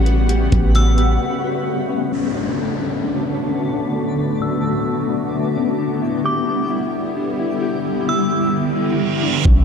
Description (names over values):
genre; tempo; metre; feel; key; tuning
hip hop, atmospheric cloud-rap; 131 BPM; 4/4; half-time; B minor; A4 = 440 Hz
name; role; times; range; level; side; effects
granular cloud pad; sustained chords; 0.0-9.6 s; C#3 to F#5; -20 LUFS; equal; built-in reverb, phaser, sidechain pumping, low-pass filter
mellow electric guitar; arpeggios; 0.0-9.6 s; C#4 to A4; -25 LUFS; left 7 dB; low-pass filter, digital delay
soft 808-style bass; bass; 0.0-1.2, 9.5-9.6 s; A1 to B1; -15 LUFS; equal; none
twinkling granular texture; texture; 0.0-9.6 s; C#4 to D6; -30 LUFS; right 2 dB; built-in reverb
trap drum kit; drums; 0.1-1.1, 9.5-9.6 s; hi-hat, kick drum; -16 LUFS; equal; none
metallic FM bell; melody; 0.8-8.5 s; D6 to F#6; -26 LUFS; right 1 dB; chorus, phaser, low-pass filter, digital delay
downlifter, reverse cymbal and impact; sound effects; 2.1-9.6 s; none; -27 LUFS; right 3 dB; none
room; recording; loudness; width
light reverb; dark, warm production; -17 LUFS; side -6 dB against mid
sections
0.0-2.1 A section; 2.1-9.5 B section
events
break 1.2-2.1; filter sweep 2.1-9.5; reverse cymbal 8.8-9.5; hi-hats muted 9.5; impact 9.5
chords
0.0 A13; 2.1 Bm9; 5.8 Em7